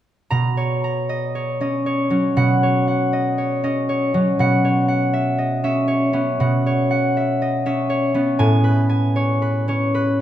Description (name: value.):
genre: classical, solo harp piece.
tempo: 59 BPM.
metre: 4/4.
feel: rubato.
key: B major.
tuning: A4 = 440 Hz.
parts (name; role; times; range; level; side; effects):
concert harp; solo; 0.3-10.2 s; A2 to A#5; -17 LUFS; equal; none.
room: wet recital hall reverb, RT60 1.4 s.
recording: none.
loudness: -17 LUFS.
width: side -11 dB against mid.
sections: 0.3-10.2 A section.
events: none.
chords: 0.3 Bmaj9; 4.4 C#m11/B; 8.4 Amaj9.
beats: | 0.31 1.35 2.37 3.38 | 4.39 5.38 6.39 7.41 | 8.39 9.42.